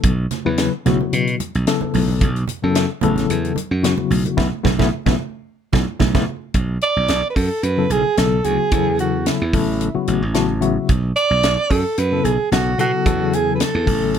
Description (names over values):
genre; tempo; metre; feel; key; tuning
electric jazz fusion; 110 BPM; 4/4; swing 54% on 16ths; B dorian; A4 = 440 Hz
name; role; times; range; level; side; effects
tine electric piano; accompaniment; 0.0-14.2 s; C#3 to A5; -21 LUFS; left 9 dB; medium tremolo
glassy slap bass; bass; 0.0-14.2 s; A1 to B2; -20 LUFS; right 1 dB; none
tight funk drum kit; drums; 0.0-14.2 s; hi-hat, kick drum, snare drum; -21 LUFS; right 1 dB; none
congas; percussion; 0.3-6.3 s; none; -24 LUFS; right 9 dB; none
clear alto saxophone; melody; 6.8-14.2 s; E4 to D5; -19 LUFS; right 4 dB; slapback echo
room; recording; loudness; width
light reverb; none; -16 LUFS; side -8 dB against mid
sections
0.0-6.5 A section; 6.5-14.2 B section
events
band accent 4.4-6.5; drum fill 6.0-6.5; tine electric piano fill 10.1-10.9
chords
0.0 B9sus4; 6.5 Bm7; 8.7 Esus24; 9.5 Aadd9; 10.9 Bm7; 13.1 Esus24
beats
| 0.03 0.57 1.12 1.66 | 2.21 2.75 3.29 3.83 | 4.38 4.92 5.46 6.01 | 6.55 7.09 7.64 8.18 | 8.72 9.27 9.81 10.35 | 10.89 11.43 11.98 12.52 | 13.06 13.60 14.14